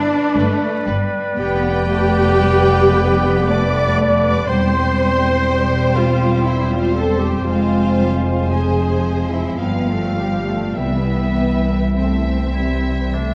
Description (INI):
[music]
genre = classical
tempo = 49-62 BPM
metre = 3/4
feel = rubato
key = C major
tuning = A4 = 439 Hz
[part]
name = concert flute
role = second line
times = 0.0-13.3 s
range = D5 to Ab5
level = -32 LUFS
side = equal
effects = none
[part]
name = mellow clarinet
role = second line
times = 0.0-13.3 s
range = G3 to D5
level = -28 LUFS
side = equal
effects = none
[part]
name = rich studio violin section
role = second line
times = 0.0-13.3 s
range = G4 to D6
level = -32 LUFS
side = equal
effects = none
[part]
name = warm oboe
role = second line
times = 0.0-13.3 s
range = D4 to F5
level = -31 LUFS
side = equal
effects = none
[part]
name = rich studio viola section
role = accompaniment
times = 0.0-13.3 s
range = G3 to D5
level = -24 LUFS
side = equal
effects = none
[part]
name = rich studio cello section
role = bass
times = 0.0-13.3 s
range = E3 to D4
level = -26 LUFS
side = equal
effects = none
[part]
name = rich studio violin section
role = melody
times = 0.4-13.3 s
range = B4 to F5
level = -32 LUFS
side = equal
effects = none
[part]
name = warm studio double bass section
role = bass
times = 0.4-13.3 s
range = E1 to C2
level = -22 LUFS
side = equal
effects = none
[part]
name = mellow French horn section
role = sustained chords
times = 1.4-13.3 s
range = G3 to F4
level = -27 LUFS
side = equal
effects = none
[part]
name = timpani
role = percussion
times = 10.8-12.5 s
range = C3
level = -33 LUFS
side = equal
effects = none
[sound]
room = moderate concert hall reverb, RT60 2.3 s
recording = worn, warbling old tape, cassette tape, vinyl crackle, warbly pitch drift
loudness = -17 LUFS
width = mono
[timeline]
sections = 0.0-13.3 A section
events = none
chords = 0.0 G; 1.4 G7/F; 4.5 C/E; 7.5 Fm; 9.6 G9; 10.8 C